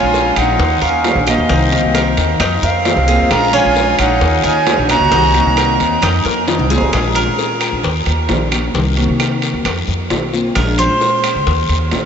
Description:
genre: latin, Cuban son and guajira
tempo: 132 BPM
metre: 4/4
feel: straight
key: Bb minor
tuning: A4 = 444 Hz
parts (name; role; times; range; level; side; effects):
- reedy concert flute; melody; 0.0-6.2 s; Eb5 to Bb5; -17 LUFS; right 2 dB; ping-pong delay
- clear trumpet; second line; 0.0-6.0 s; C4 to Gb4; -23 LUFS; left 3 dB; none
- picked steel-string acoustic guitar; accompaniment; 0.0-12.1 s; C3 to Gb4; -21 LUFS; left 2 dB; ensemble chorus
- Cuban tres; arpeggios; 0.0-7.8, 10.6-11.4 s; Db4 to Eb5; -19 LUFS; right 2 dB; ping-pong delay
- upright bass; bass; 0.0-12.1 s; Bb1 to C3; -18 LUFS; equal; none
- bongos; percussion; 0.1-12.1 s; none; -25 LUFS; left 6 dB; none
- guiro; percussion; 0.1-12.1 s; none; -27 LUFS; left 9 dB; none
- timbales; percussion; 0.1-12.1 s; none; -22 LUFS; right 5 dB; none
- claves; percussion; 0.4-11.5 s; none; -32 LUFS; right 7 dB; none
room: wet huge ambient reverb, RT60 7.7 s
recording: dreamy mix soaked in reverb, nothing above 7.9 kHz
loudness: -12 LUFS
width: side -7 dB against mid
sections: 0.0-6.9 A section; 6.9-12.1 B section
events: drum fill 6.3-6.9; Cuban tres solo 6.9-12.1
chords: 0.0 Bbm7; 0.6 Ebm7; 1.5 Cm7b5; 2.4 F7sus4; 3.3 Bbm7; 4.2 Ebm7; 5.1 Cm7b5; 6.0 F7sus4; 6.9 Bbm7; 7.8 Ebm7; 8.7 Cm7b5; 9.7 F7sus4; 10.6 Bbm7; 11.5 Ebm7

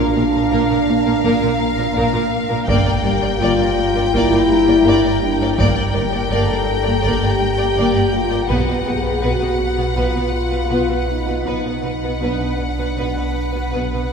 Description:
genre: cinematic, suspense film score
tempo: 82 BPM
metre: 4/4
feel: straight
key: unclear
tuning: A4 = 440 Hz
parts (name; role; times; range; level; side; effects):
- rich studio violin section; melody; 0.0-14.1 s; F5 to G5; -25 LUFS; left 3 dB; none
- rich studio violin section; second line; 0.0-14.0 s; Bb4 to D5; -26 LUFS; left 1 dB; none
- rich studio viola section; accompaniment; 0.0-14.0 s; Bb3 to B3; -24 LUFS; equal; none
- dark French horn section; sustained chords; 0.0-14.1 s; D4 to Bb4; -20 LUFS; left 1 dB; none
- granular cloud pad; sustained chords; 0.0-14.1 s; G4 to B5; -28 LUFS; equal; built-in reverb
- rich symphonic cello section; riff; 0.0-14.1 s; G2 to B2; -27 LUFS; right 1 dB; none
- rich studio cello section; bass; 0.0-14.0 s; G2 to B2; -27 LUFS; right 1 dB; none
- pure sine sub bass; drone; 0.0-14.1 s; G1 to B1; -27 LUFS; right 1 dB; none
- warm studio double bass section; bass; 0.2-13.8 s; G1 to B1; -28 LUFS; right 3 dB; none
- solo taiko drums; drums; 1.2-9.9 s; none; -29 LUFS; equal; none
room: wet cathedral reverb, RT60 4.6 s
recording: recorded in a church or concert hall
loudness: -15 LUFS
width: side -6 dB against mid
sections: 0.0-14.1 A section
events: none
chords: 0.0 Bb; 2.7 Gm; 8.5 Bm

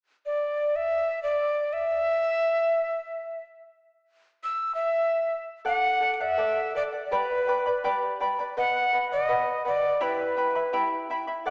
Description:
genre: andean folk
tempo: 82 BPM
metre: 2/4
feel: straight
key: E minor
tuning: A4 = 440 Hz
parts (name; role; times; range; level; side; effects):
- breathy quena; melody; 0.3-11.5 s; B4 to E6; -27 LUFS; equal; none
- charango; accompaniment; 5.6-11.5 s; E4 to B5; -30 LUFS; equal; none
room: wet scoring stage reverb, RT60 1.7 s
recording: recorded in a church or concert hall, small speaker sound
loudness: -26 LUFS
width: mono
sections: 0.0-5.7 A section; 5.7-11.5 B section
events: none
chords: 0.0 N.C.; 5.7 D; 7.1 G; 8.6 B; 10.0 Em

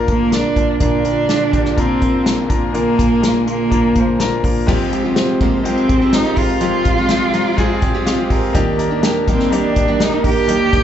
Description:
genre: piano-driven pop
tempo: 124 BPM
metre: 4/4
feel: straight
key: unclear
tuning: A4 = 442 Hz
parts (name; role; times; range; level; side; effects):
- warm concert grand piano; accompaniment; 0.0-10.8 s; F1 to Bb5; -19 LUFS; left 3 dB; slapback echo
- warm studio string section; sustained chords; 0.0-10.8 s; D3 to D5; -28 LUFS; left 1 dB; none
- warm cello; melody; 0.1-10.8 s; Bb3 to G4; -17 LUFS; right 2 dB; none
- unplugged drum kit; drums; 0.1-10.8 s; crash cymbal, hi-hat, kick drum, snare drum; -19 LUFS; equal; none
- picked steel-string acoustic guitar; riff; 4.7-10.8 s; Eb3 to G4; -20 LUFS; right 6 dB; slapback echo
room: moderate club reverb, RT60 0.9 s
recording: live gig heard through the venue's PA, club reverb, nothing above 8.0 kHz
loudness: -13 LUFS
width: side -10 dB against mid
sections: 0.0-4.7 A section; 4.7-10.8 B section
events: grand piano fill 7.1-8.6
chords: 0.0 Bb; 4.7 Fmadd9; 8.6 Ebmaj7

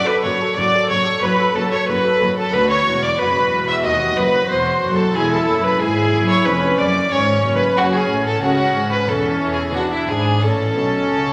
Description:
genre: classical, baroque-style concerto movement with solo episodes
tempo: 92 BPM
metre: 4/4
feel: straight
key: A major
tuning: A4 = 442 Hz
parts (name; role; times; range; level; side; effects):
- rich violin; melody; 0.0-11.3 s; E4 to E5; -22 LUFS; equal; none
- warm chamber violin section; melody; 0.0-11.3 s; E5 to E6; -28 LUFS; equal; none
- warm chamber violin section; second line; 0.0-11.3 s; E4 to E5; -24 LUFS; equal; none
- dark chamber viola section; accompaniment; 0.0-11.3 s; C#4 to A4; -25 LUFS; equal; none
- harpsichord; accompaniment; 0.0-11.3 s; D2 to A4; -31 LUFS; equal; none
- dark chamber cello section; bass; 0.2-11.3 s; D2 to E3; -28 LUFS; equal; none
- rich chamber double bass section; bass; 0.2-11.3 s; E1 to E2; -28 LUFS; equal; none
room: wet recital hall reverb, RT60 1.5 s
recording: none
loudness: -17 LUFS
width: mono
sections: 0.0-11.3 A section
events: none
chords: 0.0 D/F#; 2.5 Bm; 3.8 D#dim7; 5.1 E; 6.5 C#/E#; 7.8 F#m; 9.1 A/E; 9.8 E7; 10.4 A

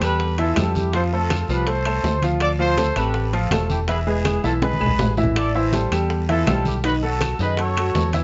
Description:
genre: latin, salsa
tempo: 163 BPM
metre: 4/4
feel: straight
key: A minor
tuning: A4 = 439 Hz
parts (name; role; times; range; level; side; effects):
- mellow trumpet section; melody; 0.0-8.1 s; E4 to D5; -28 LUFS; equal; none
- clear upright piano; accompaniment; 0.0-8.2 s; D#3 to F5; -26 LUFS; equal; none
- mellow fretless electric bass; bass; 0.0-8.2 s; E1 to F#2; -25 LUFS; equal; none
- bongos; percussion; 0.0-8.1 s; none; -35 LUFS; equal; none
- claves; percussion; 0.0-7.9 s; none; -37 LUFS; equal; none
- guiro; percussion; 0.0-8.2 s; none; -40 LUFS; equal; none
- timbales; percussion; 0.0-8.2 s; none; -32 LUFS; equal; none
- congas; percussion; 0.2-8.2 s; none; -30 LUFS; equal; none
room: moderate studio reverb, RT60 0.8 s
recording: nothing above 7.8 kHz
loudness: -21 LUFS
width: mono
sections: 0.0-8.2 A section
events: drum fill 4.6-5.4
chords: 0.0 A7(no3); 0.9 F; 2.4 Dm7; 3.9 E; 5.4 Am7; 6.8 B7

